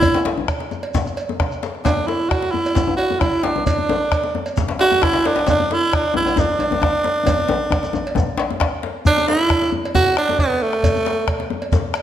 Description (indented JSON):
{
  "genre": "west african traditional, West African drum ensemble",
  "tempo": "133 BPM",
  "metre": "4/4",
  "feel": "straight",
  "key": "D major pentatonic",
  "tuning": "A4 = 445 Hz",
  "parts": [
    { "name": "growling tenor saxophone", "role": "melody", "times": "0.0-11.5 s", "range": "A3 to F#4", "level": "-18 LUFS", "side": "right 2 dB", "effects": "none" },
    { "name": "bombo", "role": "percussion", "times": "0.0-12.0 s", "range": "none", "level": "-22 LUFS", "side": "right 1 dB", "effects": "none" },
    { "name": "cowbell", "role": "percussion", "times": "0.0-12.0 s", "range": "none", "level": "-28 LUFS", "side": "right 4 dB", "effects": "none" },
    { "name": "djembe", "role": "percussion", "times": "0.0-11.8 s", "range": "none", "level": "-26 LUFS", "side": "left 6 dB", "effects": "none" },
    { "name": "shekere", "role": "percussion", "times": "0.0-12.0 s", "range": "none", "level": "-31 LUFS", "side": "right 1 dB", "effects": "none" },
    { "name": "djembe", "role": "percussion", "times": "0.1-8.7 s", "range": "none", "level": "-25 LUFS", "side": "left 6 dB", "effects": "none" }
  ],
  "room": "wet recital hall reverb, RT60 1.4 s",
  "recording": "none",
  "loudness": "-16 LUFS",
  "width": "side -11 dB against mid",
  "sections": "0.0-9.1 A section; 9.1-12.0 B section",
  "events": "speeding up 0.0-12.0; drum fill 7.3-9.1",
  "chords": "none",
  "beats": "| 0.03 0.48 0.94 1.40 | 1.85 2.31 2.76 3.21 | 3.67 4.12 4.57 5.02 | 5.47 5.92 6.37 6.82 | 7.27 7.72 8.16 8.61 | 9.06 9.50 9.95 10.39 | 10.84 11.28 11.72"
}